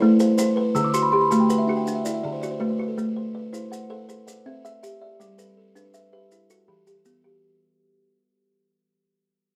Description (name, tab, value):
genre	southern african traditional, mbira-style interlocking cycle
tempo	108 BPM (dotted quarters)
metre	12/8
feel	straight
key	A dorian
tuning	A4 = 441 Hz
part	buzzing kalimba	arpeggios	0.0-7.6 s	D3 to E6	-27 LUFS	equal	none
part	kalimba	arpeggios	0.0-7.6 s	D3 to F#5	-24 LUFS	equal	none
part	maracas	percussion	0.2-7.2 s	none	-39 LUFS	equal	none
room	light reverb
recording	dark, warm production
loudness	-22 LUFS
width	mono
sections	0.0-7.4 A section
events	fade-out 0.0-7.4; kalimba fill 0.8-3.0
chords	0.0 Am; 0.8 D; 3.0 Am; 4.1 C; 5.2 G; 6.3 Em